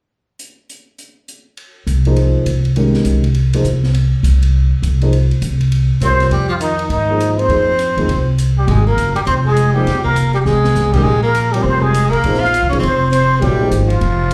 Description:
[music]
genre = modal jazz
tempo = 203 BPM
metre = 4/4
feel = swing 63% on 8ths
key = F minor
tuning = A4 = 440 Hz
[part]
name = open jazz drum kit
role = drums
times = 0.4-14.3 s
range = crash cymbal, hi-hat, kick drum, ride cymbal, snare drum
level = -31 LUFS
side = equal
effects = none
[part]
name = upright bass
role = bass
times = 1.9-14.3 s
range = F1 to Ab2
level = -17 LUFS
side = equal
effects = none
[part]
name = dark concert grand piano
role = accompaniment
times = 2.1-14.3 s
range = C3 to Db5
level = -22 LUFS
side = equal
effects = slapback echo
[part]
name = trumpet with plunger mute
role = melody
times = 6.0-14.3 s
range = Eb4 to F5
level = -19 LUFS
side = equal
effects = slapback echo
[part]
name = bright tenor saxophone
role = second line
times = 6.0-14.3 s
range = Eb3 to F4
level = -24 LUFS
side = equal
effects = slapback echo
[sound]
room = moderate club reverb, RT60 0.6 s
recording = live gig heard through the venue's PA, club reverb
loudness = -15 LUFS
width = mono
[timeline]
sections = 0.4-1.6 A section; 1.6-6.3 B section; 6.3-14.3 C section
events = drum fill 10.5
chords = 0.4 N.C.; 1.6 Fm11; 11.0 Bbm11

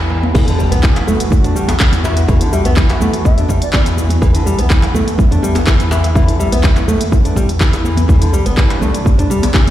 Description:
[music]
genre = afro house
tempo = 124 BPM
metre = 4/4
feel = swing 53% on 16ths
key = E minor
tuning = A4 = 440 Hz
[part]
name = warm analog pad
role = sustained chords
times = 0.0-9.7 s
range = C3 to G4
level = -24 LUFS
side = right 1 dB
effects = chorus, sidechain pumping
[part]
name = round analog bass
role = bass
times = 0.0-9.7 s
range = G1 to E2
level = -16 LUFS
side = equal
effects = sidechain pumping
[part]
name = congas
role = percussion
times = 0.0-9.7 s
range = none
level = -24 LUFS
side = right 1 dB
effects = none
[part]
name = djembe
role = percussion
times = 0.0-9.5 s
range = none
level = -24 LUFS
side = left 1 dB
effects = none
[part]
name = noise sweep and impact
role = sound effects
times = 0.0-2.3 s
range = none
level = -23 LUFS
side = equal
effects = none
[part]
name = nylon-string guitar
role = arpeggios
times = 0.1-9.7 s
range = D3 to D4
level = -19 LUFS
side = equal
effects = sidechain pumping, tape echo
[part]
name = electronic kick drum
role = drums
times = 0.3-9.6 s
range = none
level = -12 LUFS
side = equal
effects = none
[part]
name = afro-pop drum kit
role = drums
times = 0.4-9.7 s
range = crash cymbal, handclaps, hi-hat, shaker, toms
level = -20 LUFS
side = equal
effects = none
[part]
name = reedy bansuri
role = melody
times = 2.0-6.6 s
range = D5 to E5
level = -26 LUFS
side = left 3 dB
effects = tape echo
[sound]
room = light reverb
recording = played on a big sound system in a bare room, large studio reverb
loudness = -11 LUFS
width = side -13 dB against mid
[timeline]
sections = 0.3-9.7 A section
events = noise sweep 0.0-0.3; drop 0.3-9.7; impact 0.3-2.3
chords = 0.3 Em; 8.1 C

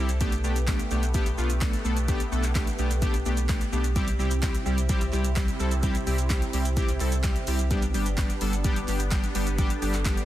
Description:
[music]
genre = dance-pop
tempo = 128 BPM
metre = 4/4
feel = straight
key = unclear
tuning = A4 = 440 Hz
[part]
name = big bright polysynth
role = accompaniment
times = 0.0-10.2 s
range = G3 to A4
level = -30 LUFS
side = equal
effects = chorus, sidechain pumping
[part]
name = sweeping resonant pad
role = sustained chords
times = 0.0-10.2 s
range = C3 to A4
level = -35 LUFS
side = right 2 dB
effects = chorus, sidechain pumping
[part]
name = sub bass with octave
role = bass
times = 0.0-10.2 s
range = G1 to C2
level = -27 LUFS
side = equal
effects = sidechain pumping
[part]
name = deep house drum kit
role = drums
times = 0.1-10.2 s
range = handclaps, hi-hat, kick drum, shaker, snare drum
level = -28 LUFS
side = equal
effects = none
[part]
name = group handclap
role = percussion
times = 4.4-10.2 s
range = none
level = -44 LUFS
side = right 5 dB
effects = none
[sound]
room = digital ambience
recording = dense, heavily limited modern master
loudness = -23 LUFS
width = side -13 dB against mid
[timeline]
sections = 0.0-10.2 A section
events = none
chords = 0.2 Gadd9/B; 4.0 C; 7.7 G

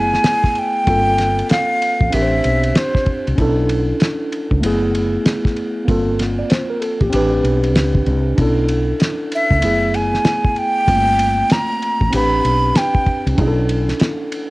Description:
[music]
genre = hip hop, jazz-hop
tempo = 96 BPM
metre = 4/4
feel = swing 62% on 16ths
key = unclear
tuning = A4 = 444 Hz
[part]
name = breathy jazz flute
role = melody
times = 0.0-3.3, 9.4-13.3 s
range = C5 to B5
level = -17 LUFS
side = equal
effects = cassette tape
[part]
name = mellow tine electric piano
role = accompaniment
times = 0.0-14.5 s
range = A3 to D5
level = -20 LUFS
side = equal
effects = medium stereo tremolo, cassette tape
[part]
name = woody fretless electric bass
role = bass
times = 0.0-13.9 s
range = F#1 to C#2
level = -19 LUFS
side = equal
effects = none
[part]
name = cloth-damped thuddy drum kit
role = drums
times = 0.1-14.5 s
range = hi-hat, kick drum, ride cymbal, snare drum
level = -20 LUFS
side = equal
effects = none
[sound]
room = light reverb, studio ambience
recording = home recording on cassette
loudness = -14 LUFS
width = side -21 dB against mid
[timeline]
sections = 0.0-14.5 A section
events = none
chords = 0.0 F#m11; 0.9 Gm11; 2.1 Am11; 3.4 Bm11; 4.6 F#m11; 5.9 Gm11; 7.1 Am11; 8.4 Bm11; 9.6 F#m11; 10.9 Gm11; 12.1 Am11; 13.4 Bm11

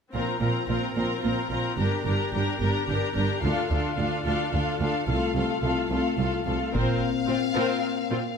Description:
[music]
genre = cinematic, epic orchestral film score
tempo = 73 BPM (dotted quarters)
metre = 6/8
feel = straight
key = unclear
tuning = A4 = 441 Hz
[part]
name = rich symphonic violin section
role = second line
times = 0.1-8.2 s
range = C4 to Bb5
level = -30 LUFS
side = left 4 dB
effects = none
[part]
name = rich studio viola section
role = accompaniment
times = 0.1-8.2 s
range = A3 to G4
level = -30 LUFS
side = left 2 dB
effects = none
[part]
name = rich symphonic double bass section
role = bass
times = 0.1-7.0 s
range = G1 to D2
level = -30 LUFS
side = right 3 dB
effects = none
[part]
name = warm symphonic cello section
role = bass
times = 0.1-8.2 s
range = C2 to Bb2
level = -30 LUFS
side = right 2 dB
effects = none
[part]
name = warm symphonic violin section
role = melody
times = 6.7-8.3 s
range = F5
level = -32 LUFS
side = left 5 dB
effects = none
[part]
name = mellow French horn section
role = sustained chords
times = 6.7-8.4 s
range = Bb3 to C4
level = -28 LUFS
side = left 9 dB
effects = none
[part]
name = taiko ensemble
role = drums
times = 6.7-7.8 s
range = none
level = -34 LUFS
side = left 1 dB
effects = none
[sound]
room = moderate scoring stage reverb, RT60 1.8 s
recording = none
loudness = -24 LUFS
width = side -6 dB against mid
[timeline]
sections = 0.1-6.7 A section; 6.7-8.4 B section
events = none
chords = 0.1 Bbsus2; 1.8 Gm; 3.4 Dm; 5.1 F/C; 6.7 Bbsus2

